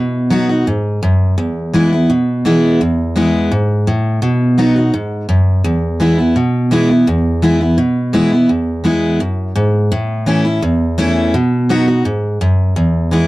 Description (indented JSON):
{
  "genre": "bluegrass",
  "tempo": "169 BPM",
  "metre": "4/4",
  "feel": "straight",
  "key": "E major",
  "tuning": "A4 = 440 Hz",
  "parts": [
    { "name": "picked steel-string acoustic guitar", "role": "solo", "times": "0.0-13.3 s", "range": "E2 to F#4", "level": "-12 LUFS", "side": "equal", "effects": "none" }
  ],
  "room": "light reverb",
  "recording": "dry, close 1970s-style studio recording",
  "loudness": "-12 LUFS",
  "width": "side -18 dB against mid",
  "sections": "0.0-7.1 A section; 7.1-13.3 A section",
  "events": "none",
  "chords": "0.0 B; 1.4 E; 4.2 B; 5.7 E; 9.9 A; 11.3 B; 12.8 E",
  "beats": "0.32 0.67 1.03 | 1.38 1.74 2.09 2.45 | 2.81 3.16 3.52 3.87 | 4.23 4.58 4.94 5.29 | 5.65 6.01 6.36 6.72 | 7.07 7.43 7.78 8.14 | 8.49 8.85 9.21 9.56 | 9.92 10.27 10.63 10.98 | 11.34 11.69 12.05 12.40 | 12.76 13.12"
}